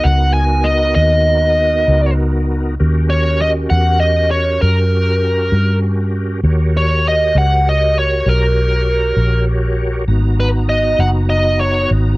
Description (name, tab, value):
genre	slow blues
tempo	66 BPM (dotted quarters)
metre	12/8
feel	straight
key	G# minor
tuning	A4 = 440 Hz
part	smooth overdriven lead guitar	melody	0.0-11.9 s	A#4 to G#5	-16 LUFS	equal	none
part	bright tonewheel organ	sustained chords	0.0-12.2 s	B3 to A#5	-22 LUFS	right 1 dB	slow rotary speaker, chorus vibrato
part	vintage muted fingered electric bass	bass	0.0-12.2 s	F#1 to G2	-15 LUFS	equal	none
room	digital ambience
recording	dry, close 1970s-style studio recording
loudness	-12 LUFS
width	side -21 dB against mid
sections	0.0-12.2 A section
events	none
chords	0.0 G#m7 (rootless); 2.8 D#7#9; 10.1 G#m7